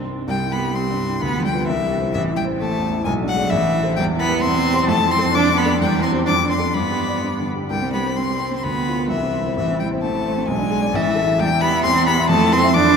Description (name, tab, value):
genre	quick classical-period movement for piano trio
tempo	130 BPM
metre	2/4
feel	rubato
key	C major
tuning	A4 = 440 Hz
part	clear violin	melody	0.0-13.0 s	E5 to D6	-22 LUFS	left 6 dB	none
part	rich cello	second line	0.0-13.0 s	E3 to D4	-22 LUFS	right 5 dB	none
part	dark baby grand piano	accompaniment	0.0-13.0 s	A1 to E5	-21 LUFS	left 1 dB	none
room	wet cathedral reverb, RT60 6.0 s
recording	in a vast, echoing space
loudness	-17 LUFS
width	side -6 dB against mid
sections	0.3-7.7 A section; 7.7-13.0 A section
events	none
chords	0.3 C; 1.2 Bdim/D; 1.7 C; 2.1 Am; 3.1 G#dim/B; 3.5 Am; 4.0 Em; 4.4 C/E; 4.9 Fmaj7; 5.3 Dm/F; 5.8 C/E; 6.3 Dm/F; 6.7 G; 7.7 C5; 8.6 Bdim/D; 9.1 C; 9.6 Am; 10.5 G#dim/B; 10.9 A5; 11.4 Em; 12.3 Fmaj7